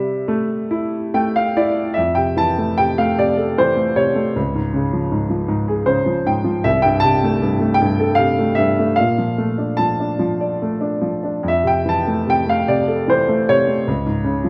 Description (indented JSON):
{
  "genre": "classical, lyrical solo piano",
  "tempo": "69-80 BPM",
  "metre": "3/4",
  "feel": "rubato",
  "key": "F major",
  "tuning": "A4 = 440 Hz",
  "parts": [
    { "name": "warm concert grand piano", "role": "solo", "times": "0.0-14.5 s", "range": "C2 to A5", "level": "-18 LUFS", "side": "equal", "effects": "none" }
  ],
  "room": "moderate recital hall reverb, RT60 1.6 s",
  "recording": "none",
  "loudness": "-18 LUFS",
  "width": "mono",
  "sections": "0.0-2.0 A section; 2.0-14.5 B section",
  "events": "grand piano fill 0.7-2.0, 5.5-6.6",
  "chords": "0.0 C6; 2.0 Fmaj7; 4.4 Db; 6.6 C6; 9.0 Bbmaj7; 11.5 Fmaj7; 13.9 Db5",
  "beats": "0.30 1.14 | 1.98 2.79 3.58 | 4.36 5.13 5.88 | 6.64 7.41 8.19 | 8.98 9.79 10.61 | 11.45 12.27 13.07 | 13.87"
}